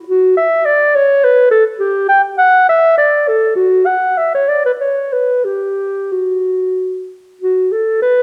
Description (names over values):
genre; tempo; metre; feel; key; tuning
classical, baroque-style fantasia for unaccompanied clarinet; 89-106 BPM; 3/4; rubato; unclear; A4 = 440 Hz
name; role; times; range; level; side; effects
dark clarinet; solo; 0.1-8.2 s; F#4 to G5; -13 LUFS; equal; none
room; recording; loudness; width
wet recital hall reverb, RT60 1.4 s; none; -13 LUFS; mono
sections
0.0-7.4 A section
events
none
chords
none